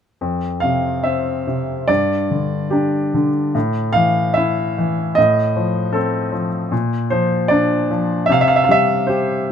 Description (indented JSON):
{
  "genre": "classical, lyrical solo piano",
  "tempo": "71-78 BPM",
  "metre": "4/4",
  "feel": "rubato",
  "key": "F major",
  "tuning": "A4 = 442 Hz",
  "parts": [
    { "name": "clear baby grand piano", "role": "solo", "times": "0.2-9.5 s", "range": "F2 to F5", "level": "-15 LUFS", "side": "equal", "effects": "none" }
  ],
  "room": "light reverb",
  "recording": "close, detailed microphones",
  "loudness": "-15 LUFS",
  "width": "side -8 dB against mid",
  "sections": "0.2-9.5 A section",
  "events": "none",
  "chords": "0.2 F5; 1.9 G5; 3.6 A5; 5.2 F7/A; 6.7 Bb; 8.3 C5"
}